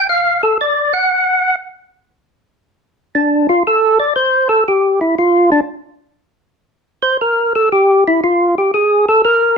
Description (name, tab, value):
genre	jazz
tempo	118 BPM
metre	4/4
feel	swing 69% on 8ths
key	G minor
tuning	A4 = 439 Hz
part	percussive tonewheel organ	solo	0.0-9.6 s	D4 to F#5	-11 LUFS	equal	slow rotary speaker, overdrive
room	moderate studio reverb, RT60 0.7 s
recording	none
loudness	-11 LUFS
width	side -5 dB against mid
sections	0.0-2.1 A section; 2.1-9.6 A section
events	tonewheel organ solo 0.0-2.1, 2.1-9.6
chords	none